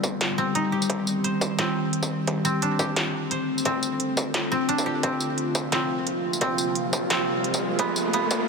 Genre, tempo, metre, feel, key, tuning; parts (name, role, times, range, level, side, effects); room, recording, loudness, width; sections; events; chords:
half-time drum and bass; 174 BPM; 4/4; swing 55% on 16ths, half-time; C dorian; A4 = 440 Hz
bowed-like drone; sustained chords; 0.0-8.5 s; C3 to G4; -26 LUFS; left 1 dB; built-in reverb, sidechain pumping
koto; arpeggios; 0.0-8.5 s; A3 to C5; -28 LUFS; right 1 dB; dub echo
electronic kick drum; drums; 0.0-8.4 s; -30 LUFS; equal; distortion, high-pass filter on kick, high-pass filter on room
industrial drum kit; drums; 0.0-8.4 s; hi-hat, snare drum, tambourine, toms; -29 LUFS; right 1 dB; high-pass filter on toms, high-pass filter on hats, high-pass filter on perc, high-pass filter on snare, high-pass filter on room
riser; sound effects; 6.0-8.5 s; -32 LUFS; equal
moderate huge ambient reverb, RT60 7.2 s; high-pass filter; -22 LUFS; side -4 dB against mid
0.0-8.5 A section
build-up 0.0-8.5; filter sweep on synth drone 0.0-8.5; riser 6.0-8.5
0.0 Cm; 2.3 Dm7; 5.0 Fsus4; 7.8 G7